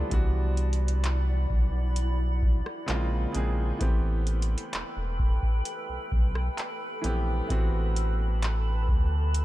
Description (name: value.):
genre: contemporary R&B.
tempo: 65 BPM.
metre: 4/4.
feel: straight.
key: A dorian.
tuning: A4 = 440 Hz.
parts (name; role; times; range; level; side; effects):
warm grand piano; accompaniment; 0.0-9.4 s; Db3 to Ab4; -35 LUFS; right 1 dB; none.
granular cloud pad; sustained chords; 0.0-9.4 s; E4 to B5; -36 LUFS; left 1 dB; built-in reverb.
saturated sub bass; bass; 0.0-9.4 s; E1 to D2; -26 LUFS; equal; none.
booming analog drum machine; drums; 0.1-9.4 s; handclaps, hi-hat, kick drum, rim click; -26 LUFS; equal; none.
room: little or no reverb.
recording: none.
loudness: -25 LUFS.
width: side -16 dB against mid.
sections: 0.0-9.4 A section.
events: none.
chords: 0.1 Cmaj9#11; 2.9 Bbm9; 3.8 Am9.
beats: | 0.12 1.04 1.96 2.88 | 3.81 4.73 5.65 6.58 | 7.50 8.42 9.35.